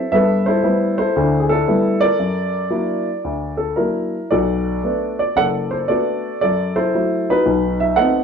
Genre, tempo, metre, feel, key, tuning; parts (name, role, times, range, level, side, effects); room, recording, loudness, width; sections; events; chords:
solo jazz; 115 BPM; 4/4; swing 66% on 8ths, rubato; A4 = 441 Hz
warm upright piano; solo; 0.0-8.2 s; F#1 to F#5; -16 LUFS; equal
wet studio reverb, RT60 0.6 s; band playing live in one room; -16 LUFS; side -6 dB against mid
0.0-8.2 A section
0.1 G69; 2.2 F#7alt; 4.3 Bm7; 6.4 F#m7b5; 7.5 B7b9